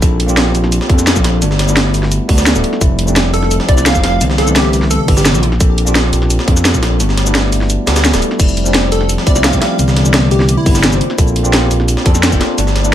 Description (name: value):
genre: liquid drum and bass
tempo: 172 BPM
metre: 4/4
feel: straight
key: F major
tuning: A4 = 440 Hz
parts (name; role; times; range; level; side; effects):
- bell-like tine electric piano; accompaniment; 0.0-12.9 s; C3 to C5; -17 LUFS; equal; wide subtle chorus
- smooth gliding synth bass; bass; 0.0-12.9 s; D1 to F2; -15 LUFS; equal; tube saturation
- breakbeat sampler-style drum kit; drums; 0.0-12.8 s; hi-hat, snare drum; -20 LUFS; equal; high-pass filter on hats, high-pass filter on snare, high-pass filter on room
- drum and bass drum kit; drums; 0.0-12.9 s; cabasa, crash cymbal, hi-hat, snare drum; -16 LUFS; equal; none
- electronic kick drum; drums; 0.0-12.4 s; none; -12 LUFS; equal; none
- plucky unison lead; melody; 3.3-5.5, 8.9-10.8 s; E4 to F5; -20 LUFS; equal; ping-pong delay
room: light reverb, digital ambience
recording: none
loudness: -10 LUFS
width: side -11 dB against mid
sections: 0.0-8.4 A section; 8.4-12.9 A section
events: drop 0.0-8.4, 8.4-12.9; kick drops out 7.0-8.4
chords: 0.0 Bbmaj9; 1.4 Gmaj9; 2.8 Fmaj9; 4.2 Cmaj9; 5.4 Bbmaj9; 7.0 Gmaj9; 8.4 Fmaj9; 9.8 Cmaj9; 11.0 Bbmaj9